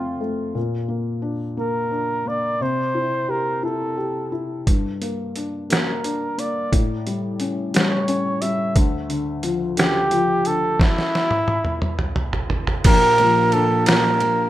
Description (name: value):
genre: six-eight pop ballad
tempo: 59 BPM (dotted quarters)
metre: 6/8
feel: straight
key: unclear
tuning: A4 = 441 Hz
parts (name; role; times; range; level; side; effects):
- warm flugelhorn; melody; 0.0-14.5 s; E4 to E5; -21 LUFS; right 1 dB; tape echo
- felt-muted upright piano; accompaniment; 0.0-14.5 s; Bb1 to G4; -24 LUFS; left 2 dB; none
- trip hop sampler-style drum kit; drums; 4.7-14.4 s; crash cymbal, hi-hat, kick drum, ride cymbal, snare drum, toms; -20 LUFS; right 1 dB; none
- picked steel-string acoustic guitar; arpeggios; 12.9-14.5 s; F3 to G4; -23 LUFS; right 4 dB; none
room: moderate studio reverb, RT60 0.6 s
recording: rough home demo mix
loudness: -18 LUFS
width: side -14 dB against mid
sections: 0.0-12.9 A section; 12.9-14.5 B section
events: drum fill 10.8-12.9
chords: 0.0 F; 0.6 Bb; 2.6 C; 4.7 Gm; 6.7 A7; 8.8 Dm; 10.8 N.C.; 12.9 Bb6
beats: | 0.56 1.58 | 2.60 3.63 | 4.67 5.70 | 6.72 7.74 | 8.76 9.78 | 10.80 11.83 | 12.85 13.87